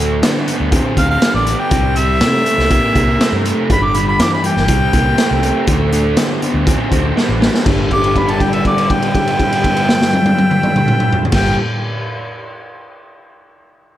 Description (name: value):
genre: blues rock power trio and southern rock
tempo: 121 BPM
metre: 4/4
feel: straight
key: G mixolydian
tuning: A4 = 441 Hz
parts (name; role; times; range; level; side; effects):
- overdriven tonewheel organ; sustained chords; 0.0-11.6 s; D4 to C5; -29 LUFS; right 3 dB; none
- overdriven semi-hollow guitar; riff; 0.0-11.6 s; G2 to C4; -18 LUFS; equal; none
- vintage muted fingered electric bass; bass; 0.0-11.5 s; G1 to D3; -19 LUFS; equal; none
- raw garage drum kit; drums; 0.2-11.4 s; crash cymbal, hi-hat, kick drum, snare drum, toms; -16 LUFS; equal; none
- clear harmonica; melody; 1.0-11.6 s; D5 to D6; -17 LUFS; equal; overdrive, slapback echo
room: moderate recital hall reverb, RT60 1.4 s, small room ambience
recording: big arena sound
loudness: -12 LUFS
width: side -12 dB against mid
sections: 0.0-7.7 A section; 7.7-11.6 B section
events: drum fill 7.2-7.7; held note 7.7-11.3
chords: 0.0 D7; 1.7 C7; 3.7 G7; 4.7 C7; 5.7 D7; 7.7 G13